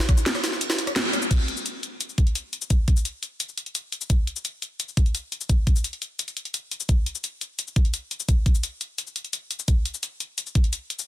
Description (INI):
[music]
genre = drum and bass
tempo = 172 BPM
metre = 4/4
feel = straight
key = none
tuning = none
[part]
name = jungle sampler-style drum kit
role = drums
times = 0.0-1.2 s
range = hi-hat, snare drum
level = -27 LUFS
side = right 1 dB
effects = high-pass filter on snare, high-pass filter on hats, high-pass filter on room
[part]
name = drum and bass drum kit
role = drums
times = 0.1-11.1 s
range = cabasa, crash cymbal, hi-hat, ride cymbal, rim click, snare drum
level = -27 LUFS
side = left 2 dB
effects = none
[part]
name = electronic kick drum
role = drums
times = 0.1-10.6 s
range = none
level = -19 LUFS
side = equal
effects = none
[sound]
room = light reverb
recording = dense, heavily limited modern master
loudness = -23 LUFS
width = side -14 dB against mid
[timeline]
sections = 0.0-1.3 A section; 1.3-11.1 B section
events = drop 0.0-1.3; break 0.6-1.3; band accent 1.0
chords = none